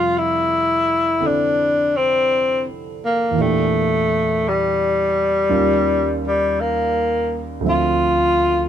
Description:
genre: jazz ballad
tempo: 56 BPM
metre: 4/4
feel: swing 66% on 8ths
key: F major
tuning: A4 = 440 Hz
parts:
  - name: mellow tenor saxophone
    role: melody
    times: 0.0-8.7 s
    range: G3 to F4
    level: -17 LUFS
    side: left 2 dB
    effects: none
  - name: warm concert grand piano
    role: accompaniment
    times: 0.0-8.7 s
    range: D2 to E5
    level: -23 LUFS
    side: right 3 dB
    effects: none
room: light reverb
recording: dark, warm production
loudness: -16 LUFS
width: side -9 dB against mid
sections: 0.0-8.7 A section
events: none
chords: 0.0 F69; 3.3 Em7b5; 5.5 Eb9; 7.6 Dm9

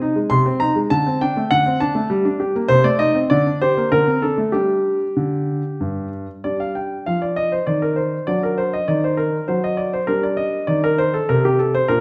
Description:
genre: classical-period piano sonatina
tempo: 100 BPM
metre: 3/4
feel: rubato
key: G minor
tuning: A4 = 437 Hz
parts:
  - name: warm grand piano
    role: solo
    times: 0.0-12.0 s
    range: G2 to C6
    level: -19 LUFS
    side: equal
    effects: none
room: wet recital hall reverb, RT60 1.4 s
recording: none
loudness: -19 LUFS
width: mono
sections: 0.0-6.4 A section; 6.4-12.0 A section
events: none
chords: 0.0 Ab; 0.9 D5; 2.1 Gm; 2.7 Adim/C; 3.3 Gm/D; 3.9 D5; 4.5 G5; 8.3 D; 10.1 G5

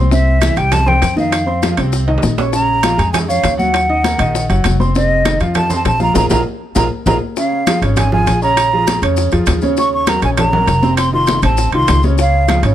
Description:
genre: latin, salsa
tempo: 199 BPM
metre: 4/4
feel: straight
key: Bb minor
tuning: A4 = 440 Hz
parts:
  - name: warm upright piano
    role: accompaniment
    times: 0.0-12.7 s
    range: C3 to Eb6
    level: -18 LUFS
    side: right 1 dB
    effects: none
  - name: upright bass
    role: bass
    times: 0.0-12.7 s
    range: F1 to F2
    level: -16 LUFS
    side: equal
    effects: none
  - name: mellow hollow concert flute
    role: melody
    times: 0.1-12.6 s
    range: Eb5 to Db6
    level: -17 LUFS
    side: right 1 dB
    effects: none
  - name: bongos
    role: percussion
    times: 0.1-12.6 s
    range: none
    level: -23 LUFS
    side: left 8 dB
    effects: none
  - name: congas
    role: percussion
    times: 0.1-12.6 s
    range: none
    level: -22 LUFS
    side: left 1 dB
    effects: none
  - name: maracas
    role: percussion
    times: 0.1-12.7 s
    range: none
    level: -29 LUFS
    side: left 4 dB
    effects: none
  - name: timbales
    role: percussion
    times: 0.4-12.7 s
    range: none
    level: -22 LUFS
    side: right 6 dB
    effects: none
room: little or no reverb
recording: close, detailed microphones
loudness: -12 LUFS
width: side -11 dB against mid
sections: 0.0-7.4 A section; 7.4-12.7 B section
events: drum fill 2.1-2.5, 6.5-7.4; band accent 6.2-7.4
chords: 0.1 C; 1.3 F5; 2.5 Bbm7; 3.7 Ebm; 5.0 F5; 6.2 Bb5; 7.4 Db; 8.6 Bbm7; 9.8 Ebm7; 11.0 F7; 12.2 Db

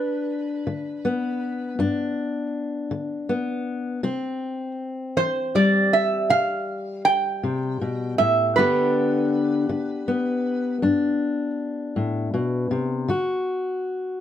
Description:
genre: acoustic country blues, solo or duo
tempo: 53 BPM (dotted quarters)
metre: 12/8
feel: straight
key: G major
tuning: A4 = 440 Hz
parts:
  - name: metal-body resonator slide guitar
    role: melody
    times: 0.0-10.8 s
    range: B4 to G5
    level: -21 LUFS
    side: right 4 dB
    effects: plate reverb
  - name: fingerpicked steel-string acoustic guitar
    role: accompaniment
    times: 0.0-14.2 s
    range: G2 to G4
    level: -23 LUFS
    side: left 3 dB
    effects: none
room: light reverb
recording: none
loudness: -21 LUFS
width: side -10 dB against mid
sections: 0.0-14.2 A section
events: none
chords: 0.0 G; 4.0 C; 8.6 G; 13.1 D

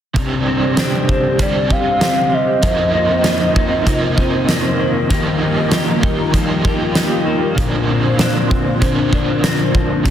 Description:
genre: dream pop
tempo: 97 BPM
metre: 4/4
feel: straight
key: C minor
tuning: A4 = 441 Hz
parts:
  - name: crunchy overdriven guitar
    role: accompaniment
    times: 0.1-10.1 s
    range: Bb2 to Bb4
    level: -20 LUFS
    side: right 4 dB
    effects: tremolo, ensemble chorus
  - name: phased analog pad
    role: sustained chords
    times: 0.2-10.1 s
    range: D3 to C5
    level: -22 LUFS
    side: equal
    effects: phaser, chorus
  - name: clean electric guitar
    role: arpeggios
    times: 0.2-10.1 s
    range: F2 to G4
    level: -20 LUFS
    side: left 4 dB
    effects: lush chorus, tape echo
  - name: huge arena drum kit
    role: drums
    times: 0.2-10.1 s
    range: hi-hat, kick drum, snare drum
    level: -19 LUFS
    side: equal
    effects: none
  - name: warbly nostalgic lead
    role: melody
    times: 0.8-4.8 s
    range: C5 to F5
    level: -19 LUFS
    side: equal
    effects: chorus, tape echo
room: moderate lush hall reverb, RT60 2.7 s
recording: dense, heavily limited modern master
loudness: -13 LUFS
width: side -10 dB against mid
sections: 0.2-10.1 A section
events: none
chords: 0.2 Csus2; 2.6 F7sus4; 5.1 Ebadd9; 7.6 Bbadd9

